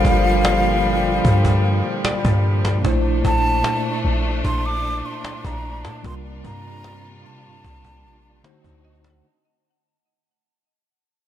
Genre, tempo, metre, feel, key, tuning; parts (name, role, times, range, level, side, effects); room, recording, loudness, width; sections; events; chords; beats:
contemporary R&B; 75 BPM; 4/4; straight; G dorian; A4 = 445 Hz
breathy concert flute; melody; 0.0-8.8 s; F5 to D6; -24 LUFS; left 2 dB; ping-pong delay
mellow tine electric piano; accompaniment; 0.0-9.3 s; Bb2 to C5; -25 LUFS; right 1 dB; medium stereo tremolo
warm symphonic string section; sustained chords; 0.0-9.2 s; Bb2 to F#4; -26 LUFS; equal
clean 808-style bass; bass; 0.0-9.2 s; G1 to C3; -20 LUFS; equal
cajon; drums; 0.0-9.2 s; -25 LUFS; equal
mallet-like synth pluck; texture; 2.0-3.2, 8.8-9.8 s; D5 to F#5; -31 LUFS; left 2 dB; chorus, ping-pong delay
little or no reverb; -17 LUFS; side -11 dB against mid
0.0-9.2 A section
fade-out 0.0-9.2
0.0 Gm11; 2.8 Bbmaj9#11; 6.0 C13sus4; 8.4 D7b9
0.45 1.25 2.05 | 2.85 3.65 4.45 5.25 | 6.05 6.85 7.65 8.45